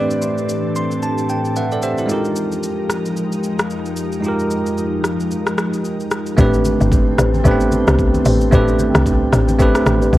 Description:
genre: amapiano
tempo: 112 BPM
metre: 4/4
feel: swing 58% on 16ths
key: unclear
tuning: A4 = 440 Hz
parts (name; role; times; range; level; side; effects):
- dark grand piano; melody; 0.0-1.0 s; D5; -26 LUFS; equal; low-pass filter, digital delay
- bell-like tine electric piano; accompaniment; 0.0-10.2 s; Ab3 to C6; -19 LUFS; right 2 dB; none
- glassy FM pad; sustained chords; 0.0-10.2 s; F2 to G5; -24 LUFS; left 2 dB; ensemble chorus, built-in reverb, low-pass filter
- smooth R&B drum kit; drums; 0.1-10.2 s; hi-hat, kick drum, rim click, shaker; -19 LUFS; equal; none
- folk marimba with medium mallets; stabs; 6.4-10.1 s; G4 to D5; -24 LUFS; left 3 dB; digital delay
- woody log drum bass; bass; 6.4-10.2 s; G1 to C2; -17 LUFS; equal; none
- congas; percussion; 6.4-10.0 s; none; -25 LUFS; left 2 dB; none
room: light reverb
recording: worn, warbling old tape, cassette tape, warbly pitch drift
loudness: -15 LUFS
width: side -16 dB against mid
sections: 0.0-6.4 A section; 6.4-10.2 B section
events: filter sweep 0.0-6.4; tine electric piano fill 0.5-2.1; drop 6.4-10.2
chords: 0.0 Am11; 2.1 Fm11; 6.4 Am11

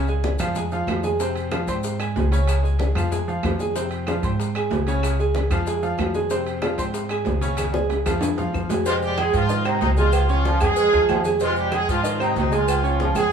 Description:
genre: latin, salsa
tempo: 188 BPM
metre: 4/4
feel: straight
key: F minor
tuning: A4 = 438 Hz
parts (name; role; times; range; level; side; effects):
- bright upright piano; accompaniment; 0.0-13.3 s; C3 to Db6; -25 LUFS; right 2 dB; none
- upright bass; bass; 0.0-13.3 s; Db2 to Ab2; -24 LUFS; equal; none
- bongos and cowbell; percussion; 0.1-13.3 s; none; -32 LUFS; left 3 dB; none
- congas; percussion; 0.1-13.3 s; none; -31 LUFS; left 2 dB; none
- maracas; percussion; 0.1-13.3 s; none; -40 LUFS; left 4 dB; none
- timbales and agogo bells; percussion; 0.2-13.3 s; none; -28 LUFS; right 6 dB; none
- claves; percussion; 0.4-13.3 s; none; -39 LUFS; left 1 dB; none
- clear horn section; melody; 8.9-13.3 s; F3 to Eb5; -23 LUFS; equal; none
- mellow trombone section; second line; 8.9-13.2 s; Eb3 to Ab3; -28 LUFS; right 2 dB; none
room: moderate large studio reverb, RT60 1.2 s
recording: band playing live in one room, small room ambience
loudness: -19 LUFS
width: side -7 dB against mid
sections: 0.0-8.9 A section; 8.9-13.3 B section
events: drum fill 7.6-8.9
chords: 0.0 Db; 0.6 Fm; 1.8 Ab; 2.5 Db; 3.1 Fm; 4.4 Ab; 5.0 Db; 5.7 Fm; 6.9 Ab; 7.6 Db; 8.2 Fm; 9.5 Ab; 10.1 Db; 10.8 Fm; 12.0 Ab; 12.7 Db

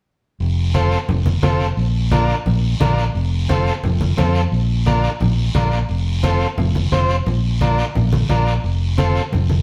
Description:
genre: latin, cumbia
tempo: 175 BPM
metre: 4/4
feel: straight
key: F major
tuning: A4 = 440 Hz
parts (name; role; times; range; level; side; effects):
- fingered electric bass; bass; 0.4-9.6 s; F1 to F2; -20 LUFS; equal; none
- guiro; percussion; 0.4-9.6 s; none; -34 LUFS; equal; none
- overdriven combo organ; accompaniment; 0.7-9.2 s; C4 to C5; -24 LUFS; equal; none
- congas; percussion; 0.7-9.6 s; none; -24 LUFS; equal; none
room: wet stone room reverb, RT60 1.0 s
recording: band playing live in one room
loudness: -18 LUFS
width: mono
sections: 0.4-9.6 A section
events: none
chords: 0.4 F; 1.8 Bb; 3.1 F; 4.5 Bb; 5.9 F; 7.3 Bb; 8.6 F

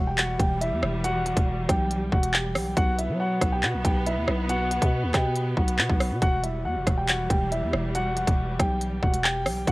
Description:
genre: hip hop, drill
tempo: 139 BPM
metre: 4/4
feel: half-time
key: E minor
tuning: A4 = 440 Hz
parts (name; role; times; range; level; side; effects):
- dark baby grand piano; melody; 0.0-9.7 s; E4 to G5; -28 LUFS; equal; none
- warm symphonic string section; sustained chords; 0.0-9.7 s; B2 to B3; -33 LUFS; equal; none
- growling 808-style bass; bass; 0.0-9.7 s; E1 to F#3; -28 LUFS; equal; none
- drill drum kit; drums; 0.2-9.7 s; handclaps, hi-hat, kick drum, rim click; -24 LUFS; equal; overdrive
room: digital ambience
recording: worn, warbling old tape, cassette tape, warbly pitch drift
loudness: -22 LUFS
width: side -21 dB against mid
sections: 0.0-9.7 A section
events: none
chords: 0.0 Emadd9; 2.8 B5; 6.2 Emadd9

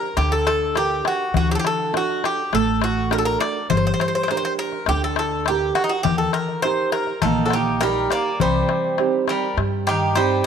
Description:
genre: greek folk, Greek bouzouki band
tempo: 102 BPM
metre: 4/4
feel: straight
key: unclear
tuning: A4 = 441 Hz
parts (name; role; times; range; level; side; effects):
- Greek bouzouki; melody; 0.0-10.5 s; Eb4 to D5; -22 LUFS; equal; none
- nylon-string guitar; accompaniment; 0.0-10.5 s; C3 to Bb4; -25 LUFS; right 10 dB; none
- darbuka; percussion; 0.0-10.4 s; none; -26 LUFS; left 11 dB; none
- upright bass; bass; 0.2-10.4 s; G1 to G2; -25 LUFS; left 1 dB; none
- Greek bouzouki; second line; 7.2-10.4 s; Eb3 to Bb3; -24 LUFS; equal; none
room: moderate plate reverb, RT60 2.5 s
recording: 1960s-style stereo with parts hard left and right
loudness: -18 LUFS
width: side -7 dB against mid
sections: 0.0-10.5 A section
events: none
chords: 0.0 Gm; 1.4 D; 3.7 Gm; 6.1 Eb; 8.4 Cm

